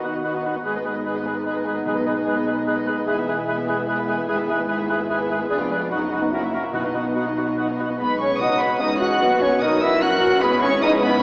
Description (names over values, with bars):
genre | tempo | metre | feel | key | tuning
quick classical-period movement for symphony orchestra | 148 BPM | 3/4 | straight | B major | A4 = 440 Hz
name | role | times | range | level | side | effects
warm studio violin section | melody | 0.0-11.2 s | B4 to F#6 | -28 LUFS | equal | none
dark studio violin section | second line | 0.0-11.2 s | D#4 to B4 | -29 LUFS | equal | none
silver concert flute | second line | 0.0-11.2 s | B4 to F#5 | -26 LUFS | equal | none
warm oboe | second line | 0.0-7.9 s | A#4 to B4 | -28 LUFS | equal | none
dark studio viola section | accompaniment | 0.0-11.2 s | F#3 to D#4 | -28 LUFS | equal | none
mellow French horn section | sustained chords | 0.0-11.1 s | G#3 to F#4 | -25 LUFS | equal | none
warm studio cello section | bass | 0.0-11.2 s | E2 to F#4 | -28 LUFS | equal | none
warm studio double bass section | bass | 0.0-11.2 s | E1 to E2 | -36 LUFS | equal | none
mellow clarinet | second line | 0.1-11.2 s | F#4 to F#5 | -28 LUFS | equal | none
timpani | percussion | 1.9-2.4, 6.7-7.3 s | B2 | -39 LUFS | equal | none
room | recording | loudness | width
wet concert hall reverb, RT60 2.2 s | recorded in a church or concert hall, small speaker sound | -19 LUFS | side -30 dB against mid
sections
0.0-8.0 A section; 8.0-11.2 A section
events
none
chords
0.0 B/D#; 0.7 G#m; 1.9 G#m/B; 3.1 E; 4.3 E/G#; 5.5 Fdim7; 5.9 B/F#; 6.3 F#7; 6.7 B; 10.4 G#m